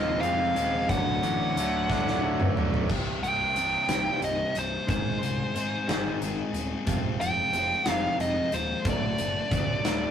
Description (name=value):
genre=quiet-loud alternative rock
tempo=60 BPM (dotted quarters)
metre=6/8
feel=straight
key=unclear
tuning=A4 = 440 Hz
part: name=nasal lead guitar with a parked wah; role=melody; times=0.0-10.1 s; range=C5 to G5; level=-28 LUFS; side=equal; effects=overdrive
part: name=twangy electric guitar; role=arpeggios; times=0.0-10.1 s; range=C2 to F4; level=-36 LUFS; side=equal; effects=none
part: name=distorted electric guitar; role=riff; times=0.0-10.1 s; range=C2 to Ab4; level=-34 LUFS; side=left 3 dB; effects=distortion
part: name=overdriven semi-hollow guitar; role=riff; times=0.0-2.9 s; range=D2 to F4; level=-30 LUFS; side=right 4 dB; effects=none
part: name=fuzz picked electric bass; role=bass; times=0.0-10.0 s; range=C1 to Ab2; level=-34 LUFS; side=equal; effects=overdrive
part: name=big rock drum kit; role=drums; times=0.2-10.0 s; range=crash cymbal, hi-hat, kick drum, snare drum, toms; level=-30 LUFS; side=equal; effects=none
room=moderate small room reverb, RT60 0.5 s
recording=rough rehearsal-room recording, warm saturation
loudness=-24 LUFS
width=side -8 dB against mid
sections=0.0-2.9 A section; 2.9-10.1 B section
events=drum fill 1.9-2.9; lead electric guitar solo 2.9-10.1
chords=0.0 Fm; 0.9 D; 2.9 C; 4.9 Ab; 6.9 Fm; 8.9 D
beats=| 0.90 1.90 | 2.89 3.89 | 4.88 5.88 | 6.87 7.86 | 8.86 9.85